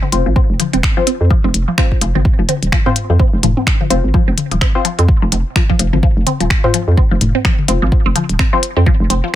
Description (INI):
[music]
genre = minimal techno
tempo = 127 BPM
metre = 4/4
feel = swing 58% on 16ths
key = F minor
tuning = A4 = 440 Hz
[part]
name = resonant blip pluck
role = riff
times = 0.0-9.3 s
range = C3 to C4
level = -20 LUFS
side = equal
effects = phaser, sidechain pumping, tape echo
[part]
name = electronic toms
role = percussion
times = 0.0-8.3 s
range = none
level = -21 LUFS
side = left 4 dB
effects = none
[part]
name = filtered dub chord stab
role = stabs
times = 0.1-8.6 s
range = C4 to C5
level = -20 LUFS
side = left 5 dB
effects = lush chorus, ping-pong delay
[part]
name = hollow knocking FM bass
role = bass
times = 0.1-9.2 s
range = Eb1 to F2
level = -14 LUFS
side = equal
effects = sidechain pumping
[part]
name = minimal click drum kit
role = drums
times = 0.1-9.2 s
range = finger snaps, hi-hat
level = -18 LUFS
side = left 2 dB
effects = none
[part]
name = electronic kick drum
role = drums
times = 0.4-9.0 s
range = none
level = -14 LUFS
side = equal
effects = none
[sound]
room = little or no reverb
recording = none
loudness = -11 LUFS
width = side -13 dB against mid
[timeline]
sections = 0.0-9.4 A section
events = none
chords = 0.0 F5